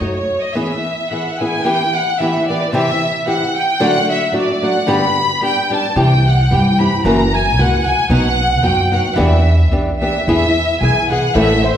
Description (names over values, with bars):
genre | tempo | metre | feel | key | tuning
mexican folk, mariachi | 111 BPM | 2/4 | straight | E minor | A4 = 440 Hz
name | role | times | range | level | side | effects
warm symphonic violin section | melody | 0.0-11.8 s | C5 to B5 | -17 LUFS | equal | none
nylon-string guitar | accompaniment | 0.0-11.5 s | F#2 to A4 | -17 LUFS | equal | none
upright bass | bass | 0.0-0.4, 6.0-11.7 s | F#1 to G2 | -15 LUFS | equal | none
room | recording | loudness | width
wet recital hall reverb, RT60 1.4 s | recorded in a church or concert hall | -13 LUFS | side -9 dB against mid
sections
0.0-1.6 A section; 1.6-10.3 B section; 10.3-11.8 A section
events
none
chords
0.0 B7 (rootless); 0.6 E; 1.6 Em; 2.7 C; 3.8 D; 4.9 G; 5.9 C; 7.0 F#7; 8.1 B; 9.2 Em7; 10.3 E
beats
0.01 | 0.55 1.09 | 1.64 2.18 | 2.72 3.26 | 3.80 4.33 | 4.87 5.41 | 5.95 6.49 | 7.03 7.57 | 8.10 8.64 | 9.18 9.72 | 10.27 10.81 | 11.35